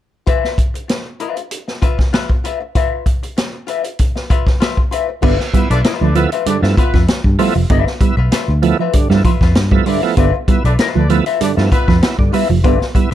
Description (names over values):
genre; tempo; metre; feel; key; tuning
funk; 97 BPM; 4/4; straight; G mixolydian; A4 = 440 Hz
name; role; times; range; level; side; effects
archtop guitar, miked and amplified; accompaniment; 0.3-13.1 s; F4 to E5; -21 LUFS; left 10 dB; wah
vintage drum kit; drums; 0.3-13.1 s; crash cymbal, hi-hat, kick drum, snare drum; -15 LUFS; equal; none
mellow electric guitar; riff; 5.2-13.1 s; F3 to B3; -19 LUFS; right 9 dB; spring reverb
bright tonewheel organ; stabs; 5.2-13.1 s; G2 to E4; -20 LUFS; right 6 dB; overdrive, chorus vibrato, slow rotary speaker
vintage muted fingered electric bass; bass; 5.2-13.1 s; F1 to G2; -15 LUFS; equal; none
warm horn section; second line; 5.5-12.0 s; B3 to D5; -23 LUFS; left 1 dB; plate reverb
room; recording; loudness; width
little or no reverb; dark, warm production; -12 LUFS; side -12 dB against mid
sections
0.3-5.2 A section; 5.2-13.1 B section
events
none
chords
0.3 E5; 5.2 G13